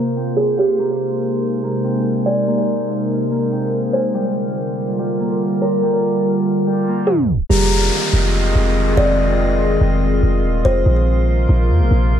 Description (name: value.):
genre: hip hop.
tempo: 143 BPM.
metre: 4/4.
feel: half-time.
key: F dorian.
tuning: A4 = 440 Hz.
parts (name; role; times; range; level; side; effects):
warbly tape-like pad; sustained chords; 0.0-12.2 s; C3 to Bb4; -20 LUFS; right 1 dB; chorus, built-in reverb.
Celtic harp; arpeggios; 0.0-10.1 s; G3 to Bb5; -26 LUFS; left 4 dB; tape echo.
drifting glass-harmonics texture; texture; 0.0-12.2 s; G3 to Eb5; -26 LUFS; left 1 dB; chorus, built-in reverb.
kalimba; melody; 0.4-10.8 s; G4 to D5; -21 LUFS; right 1 dB; tape echo.
warm 808-style bass; bass; 7.5-12.2 s; Eb1 to F2; -16 LUFS; equal; none.
downlifter; sound effects; 7.5-10.9 s; none; -24 LUFS; left 2 dB; none.
room: studio reverb.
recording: dry, gritty hardware recording, low-pass filter, tape stop.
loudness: -15 LUFS.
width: side -9 dB against mid.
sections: 0.0-7.5 A section; 7.5-12.2 B section.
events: filter sweep 0.0-7.5; tape stop 7.1-7.5.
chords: 0.0 Bbsus2; 0.8 Abadd9; 4.1 Gm7; 7.5 Fm7; 10.9 Bbsus2.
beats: 0.37 | 0.79 1.21 1.63 2.05 | 2.47 2.89 3.31 3.73 | 4.15 4.57 4.99 5.41 | 5.83 6.25 6.67 7.08 | 7.50 7.92 8.34 8.76 | 9.18 9.60 10.02 10.44 | 10.86 11.28 11.70 12.12.